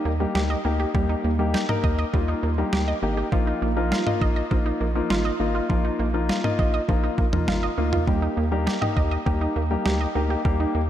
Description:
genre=synth-pop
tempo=101 BPM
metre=4/4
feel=straight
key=Eb major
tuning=A4 = 440 Hz
part: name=dark grand piano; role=accompaniment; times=0.0-10.8 s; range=Bb3 to Bb4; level=-26 LUFS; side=left 4 dB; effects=none
part: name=analog pluck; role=arpeggios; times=0.1-10.8 s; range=F3 to Eb5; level=-28 LUFS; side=right 6 dB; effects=chorus, digital delay
part: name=rubbery square bass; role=bass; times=0.1-10.9 s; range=Ab1 to Eb2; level=-25 LUFS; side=equal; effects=none
part: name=detuned 8-bit digital drum machine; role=drums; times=0.4-10.6 s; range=kick drum, snare drum, toms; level=-25 LUFS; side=equal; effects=overdrive
room=moderate lush hall reverb, RT60 2.8 s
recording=dark, warm production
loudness=-21 LUFS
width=side -11 dB against mid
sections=0.0-10.9 A section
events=none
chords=0.0 Eb; 3.3 Bbsus4; 8.1 Eb

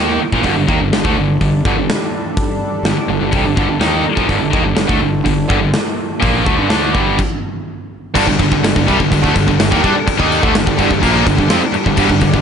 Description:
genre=hard rock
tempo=125 BPM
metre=4/4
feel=straight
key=G minor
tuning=A4 = 440 Hz
part: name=distorted electric guitar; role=riff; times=0.0-12.4 s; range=G2 to Eb4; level=-18 LUFS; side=right 9 dB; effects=overdrive
part: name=high-gain distorted guitar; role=riff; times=0.0-12.4 s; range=G2 to Eb4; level=-18 LUFS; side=left 10 dB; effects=distortion
part: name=fuzz picked electric bass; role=bass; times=0.0-12.4 s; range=G1 to G2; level=-21 LUFS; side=equal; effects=overdrive
part: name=big rock drum kit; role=drums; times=0.3-12.4 s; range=crash cymbal, hi-hat, kick drum, snare drum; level=-17 LUFS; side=equal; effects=none
part: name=lush unison pad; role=sustained chords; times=0.4-12.4 s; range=G3 to A4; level=-25 LUFS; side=left 1 dB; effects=chorus
part: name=tight distorted guitar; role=riff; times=8.1-12.4 s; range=G2 to Eb4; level=-20 LUFS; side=left 1 dB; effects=distortion
room=moderate studio reverb, RT60 1.0 s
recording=nothing above 10.9 kHz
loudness=-12 LUFS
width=side -7 dB against mid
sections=0.0-8.1 A section; 8.1-12.4 B section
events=stop 7.2-8.1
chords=0.0 Gm

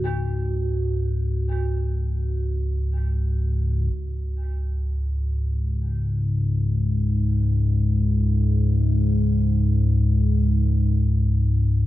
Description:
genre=dark ambient drone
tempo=free time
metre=none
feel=none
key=unclear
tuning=A4 = 442 Hz
part: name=dark detuned synth bell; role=arpeggios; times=0.0-4.4 s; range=F#4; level=-34 LUFS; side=right 3 dB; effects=chorus, phaser, diffuse ambient delay
part: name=analog drone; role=drone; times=0.0-11.9 s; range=C#2 to G#2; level=-20 LUFS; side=left 1 dB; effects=chorus
room=moderate plate reverb, RT60 2.7 s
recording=dreamy mix soaked in reverb, cassette tape, nothing above 8.0 kHz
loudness=-20 LUFS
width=side -15 dB against mid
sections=0.0-3.9 A section; 3.9-11.9 B section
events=filter sweep on synth drone 3.9-11.9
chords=0.0 C#5

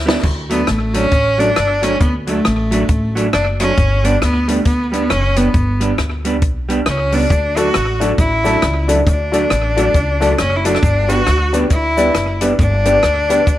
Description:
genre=ska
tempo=136 BPM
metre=4/4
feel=swing 61% on 8ths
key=D major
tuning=A4 = 440 Hz
part: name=upright bass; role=bass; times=0.0-13.6 s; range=F#1 to D2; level=-19 LUFS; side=equal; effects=none
part: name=vintage hollow-body jazz guitar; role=accompaniment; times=0.1-13.4 s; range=F#3 to D4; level=-21 LUFS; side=right 3 dB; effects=none
part: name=compact cocktail drum kit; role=drums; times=0.1-13.6 s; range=hi-hat, kick drum, rim click, snare drum, splash cymbal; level=-19 LUFS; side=equal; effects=slapback echo
part: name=bright cello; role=melody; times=0.5-13.6 s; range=A3 to F#4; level=-17 LUFS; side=left 1 dB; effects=slapback echo
part: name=cabasa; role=percussion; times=7.3-13.6 s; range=none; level=-37 LUFS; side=right 5 dB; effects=none
part: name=warm upright piano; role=stabs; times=7.6-13.4 s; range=D4 to D5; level=-19 LUFS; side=left 3 dB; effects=slapback echo
room=light reverb, small room ambience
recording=vinyl crackle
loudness=-13 LUFS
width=side -13 dB against mid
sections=0.0-13.6 A section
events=drum fill 0.0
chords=0.2 D; 3.8 G; 7.3 D; 10.8 G

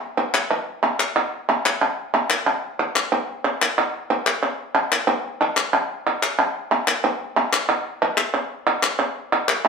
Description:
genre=flamenco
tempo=184 BPM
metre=4/4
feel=straight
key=none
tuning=none
part: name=palmas hand claps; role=percussion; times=0.2-9.7 s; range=none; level=-19 LUFS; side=equal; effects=none
room=wet studio reverb, RT60 0.8 s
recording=band playing live in one room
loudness=-19 LUFS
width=side -5 dB against mid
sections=0.0-9.2 A section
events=none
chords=none

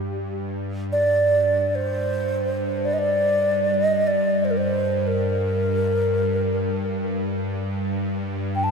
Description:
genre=world meditative, free-time meditation music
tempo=free time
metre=none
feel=none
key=G minor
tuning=A4 = 439 Hz
part: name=bowed-like drone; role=drone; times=0.0-8.7 s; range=G2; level=-25 LUFS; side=equal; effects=built-in reverb
part: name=wooden-headed alto flute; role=melody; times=0.9-8.7 s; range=Bb4 to A5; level=-22 LUFS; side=right 1 dB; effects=ping-pong delay
room=wet cathedral reverb, RT60 4.3 s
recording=none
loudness=-20 LUFS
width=side -5 dB against mid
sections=0.1-8.7 A section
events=none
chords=none

